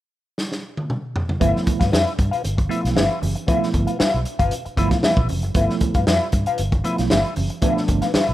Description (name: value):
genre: funk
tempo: 116 BPM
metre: 4/4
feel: straight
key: G mixolydian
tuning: A4 = 444 Hz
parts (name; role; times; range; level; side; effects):
- crunchy breakbeat drum kit; drums; 0.4-8.3 s; hi-hat, kick drum, snare drum, toms; -22 LUFS; equal; none
- semi-hollow electric guitar; accompaniment; 1.4-8.3 s; F4 to F5; -23 LUFS; left 4 dB; wah
- tine electric piano; stabs; 1.4-8.1 s; F3 to E4; -25 LUFS; right 4 dB; medium stereo tremolo
- vintage muted fingered electric bass; bass; 1.4-8.3 s; F1 to G2; -23 LUFS; equal; none
- congas; percussion; 1.4-8.3 s; none; -33 LUFS; right 5 dB; none
room: studio ambience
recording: rough home demo mix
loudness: -18 LUFS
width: side -14 dB against mid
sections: 0.0-1.4 A section; 1.4-8.3 B section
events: drum fill 0.4-1.4; tine electric piano fill 8.1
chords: 0.0 N.C.; 1.4 G13